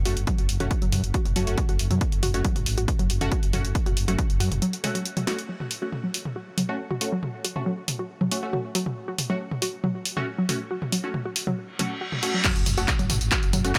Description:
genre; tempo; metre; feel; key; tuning
driving peak-time techno; 138 BPM; 4/4; straight; F# minor; A4 = 444 Hz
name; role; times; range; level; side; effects
growling FM bass; bass; 0.0-4.6, 12.6-13.7 s; F#1 to F#2; -29 LUFS; equal; sidechain pumping
warbly dusty pluck; riff; 0.1-13.6 s; F#3 to F#4; -33 LUFS; equal; chorus, overdrive, sidechain pumping, delay
rave stab; stabs; 0.1-13.7 s; A3 to F#4; -35 LUFS; equal; chorus, built-in reverb, vintage 12-bit sampler grit, sidechain pumping, delay
punchy analog drum machine; drums; 0.1-13.8 s; crash cymbal, handclaps, hi-hat, snare drum, tambourine, toms; -31 LUFS; equal; sidechain pumping on hats, sidechain pumping on toms, sidechain pumping on cymbals, sidechain pumping on perc
electronic kick drum; drums; 0.3-4.3, 12.4-13.8 s; none; -27 LUFS; equal; overdrive
reverse cymbal and sub drop; sound effects; 11.8-13.8 s; none; -34 LUFS; equal; none
room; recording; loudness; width
little or no reverb; none; -26 LUFS; mono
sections
0.0-5.5 A section; 5.5-12.4 B section; 12.4-13.8 C section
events
filter sweep on synth arpeggio sound 0.0-5.5, 5.5-12.4; break 4.6-5.5; drum fill 5.3; reverse cymbal 11.8-12.4; drop 12.4-13.8; impact 12.4-13.8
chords
0.0 F#m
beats
| 0.27 0.71 1.14 1.58 | 2.01 2.45 2.88 3.32 | 3.75 4.18 4.62 5.05 | 5.49 5.92 6.36 6.79 | 7.23 7.66 8.10 8.53 | 8.97 9.40 9.84 10.27 | 10.71 11.14 11.58 12.01 | 12.45 12.88 13.32 13.75

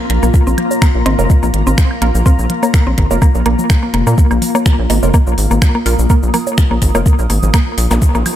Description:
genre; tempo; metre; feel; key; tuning
minimal techno; 125 BPM; 4/4; swing 54% on 16ths; unclear; A4 = 440 Hz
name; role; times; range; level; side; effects
deep dark ambient pad; texture; 0.0-8.4 s; Bb3 to Eb6; -20 LUFS; left 2 dB; chorus, built-in reverb, sidechain pumping
rubbery square bass; bass; 0.1-8.2 s; F1 to Bb2; -14 LUFS; equal; sidechain pumping
minimal click drum kit; drums; 0.1-8.4 s; finger snaps, hi-hat, shaker; -22 LUFS; equal; tape echo
mallet-like synth pluck; riff; 0.2-8.2 s; Bb3 to C4; -19 LUFS; left 1 dB; chorus, sidechain pumping, analog delay
electronic kick drum; drums; 0.3-8.1 s; none; -11 LUFS; equal; none
congas, woodblock and bongos; percussion; 0.6-8.4 s; none; -24 LUFS; right 4 dB; tape echo
wavetable chord stab; stabs; 1.2-7.0 s; Bb3 to Bb4; -24 LUFS; right 3 dB; tape echo
zap; sound effects; 7.9-8.0 s; none; -24 LUFS; equal; none
room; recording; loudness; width
digital ambience; echo-heavy mix; -10 LUFS; side -11 dB against mid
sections
0.0-8.4 A section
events
none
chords
0.0 Bb5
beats
| 0.34 0.82 1.30 1.78 | 2.26 2.74 3.22 3.70 | 4.18 4.66 5.14 5.62 | 6.10 6.58 7.06 7.54 | 8.02

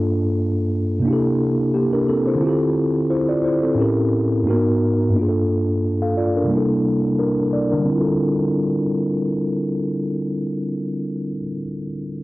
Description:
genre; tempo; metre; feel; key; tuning
hip hop; 88 BPM; 4/4; swing 55% on 16ths; D minor; A4 = 440 Hz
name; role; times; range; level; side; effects
mellow tine electric piano; solo; 0.0-12.2 s; G2 to F5; -18 LUFS; equal; medium stereo tremolo, cassette tape
room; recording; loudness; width
light reverb; home recording on cassette, low-pass filter; -18 LUFS; side -19 dB against mid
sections
0.0-7.9 A section; 7.9-10.6 B section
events
filter sweep 0.0-7.9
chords
0.0 Gm9; 1.1 C13; 2.4 Dm11; 3.8 A7b9; 4.5 G#m9; 5.1 Gm9; 6.5 C13; 7.9 Dm11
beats
0.37 1.05 1.74 | 2.42 3.10 3.78 4.46 | 5.14 5.83 6.51 7.19 | 7.87 8.55 9.24 9.92

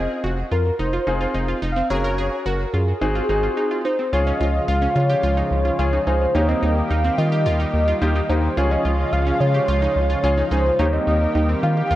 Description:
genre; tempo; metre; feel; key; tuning
pop; 108 BPM; 4/4; straight; Ab mixolydian; A4 = 440 Hz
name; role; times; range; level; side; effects
warm velvety synth lead; melody; 0.0-12.0 s; Ab4 to F5; -23 LUFS; equal; chorus, tape echo
clear baby grand piano; accompaniment; 0.0-11.5 s; Bb3 to Bb4; -27 LUFS; left 2 dB; none
analog pluck; arpeggios; 0.0-12.0 s; C4 to Bb4; -27 LUFS; right 2 dB; chorus, tape echo
rubbery square bass; bass; 0.0-12.0 s; F1 to Eb3; -21 LUFS; equal; none
lush unison pad; sustained chords; 4.1-12.0 s; Db3 to G4; -26 LUFS; equal; chorus
room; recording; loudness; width
moderate lush hall reverb, RT60 2.1 s; worn, warbling old tape, cassette tape, warbly pitch drift; -18 LUFS; side -14 dB against mid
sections
0.0-4.1 A section; 4.1-12.0 B section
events
none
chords
0.0 Fm; 1.9 Gb; 3.0 Ab7; 4.1 Db; 6.3 Eb; 8.6 Db; 10.8 Eb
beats
0.24 0.79 1.35 | 1.90 2.46 3.02 3.57 | 4.13 4.68 5.24 5.79 | 6.35 6.90 7.46 8.02 | 8.57 9.13 9.68 10.24 | 10.79 11.35 11.90

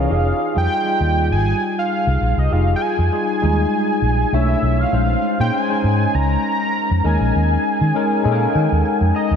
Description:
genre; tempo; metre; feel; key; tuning
polished 1980s jazz-funk pop; 100 BPM; 4/4; swing 54% on 16ths; unclear; A4 = 440 Hz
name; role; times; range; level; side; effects
fat analog lead; melody; 0.0-9.4 s; Eb5 to Bb5; -21 LUFS; right 1 dB; chorus, ping-pong delay
tine electric piano; accompaniment; 0.0-9.4 s; Fb3 to Bb5; -20 LUFS; left 2 dB; medium stereo tremolo, lush chorus
vintage muted fingered electric bass; bass; 0.0-9.4 s; F1 to Eb3; -18 LUFS; equal; none
room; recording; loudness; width
moderate lush hall reverb, RT60 2.6 s; dreamy mix soaked in reverb; -16 LUFS; side -7 dB against mid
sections
0.1-9.4 A section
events
tine electric piano fill 7.9-9.4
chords
0.1 Fm9; 4.3 Bm11; 4.9 Bbm11; 7.0 Eb7sus4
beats
| 0.10 0.71 1.31 1.92 | 2.52 3.12 3.73 4.33 | 4.93 5.54 6.14 6.74 | 7.34 7.94 8.55 9.15

